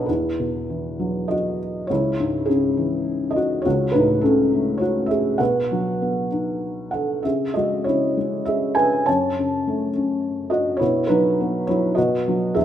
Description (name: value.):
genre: classical, lyrical solo piano.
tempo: 102 BPM.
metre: 3/4.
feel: rubato.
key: E major.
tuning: A4 = 436 Hz.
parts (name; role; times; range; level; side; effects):
felt-muted upright piano; solo; 0.0-12.6 s; C#2 to A5; -19 LUFS; equal; none.
room: moderate recital hall reverb, RT60 1.3 s.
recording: minimal, uncompressed stereo recording.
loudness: -19 LUFS.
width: side -10 dB against mid.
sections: 0.1-12.6 A section.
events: none.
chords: 0.1 Esus2; 1.9 C#m; 3.7 F#m/C#; 5.4 B; 7.2 C#m7; 9.1 F#m; 10.8 Bsus4; 12.0 B.